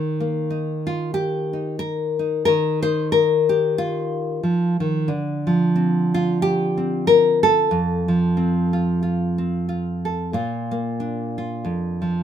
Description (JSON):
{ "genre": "folk, solo fingerstyle acoustic guitar", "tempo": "92 BPM", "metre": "4/4", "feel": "swing 57% on 8ths", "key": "Bb major", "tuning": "A4 = 440 Hz", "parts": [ { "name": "nylon-string guitar", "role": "solo", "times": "0.0-12.2 s", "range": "F2 to C5", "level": "-19 LUFS", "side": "left 1 dB", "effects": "none" } ], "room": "light reverb", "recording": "minimal, uncompressed stereo recording", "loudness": "-19 LUFS", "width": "side -9 dB against mid", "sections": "0.0-10.3 A section; 10.3-12.2 B section", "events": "none", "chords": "0.0 Ebadd9; 5.1 Dm7; 7.7 F; 10.3 Bb" }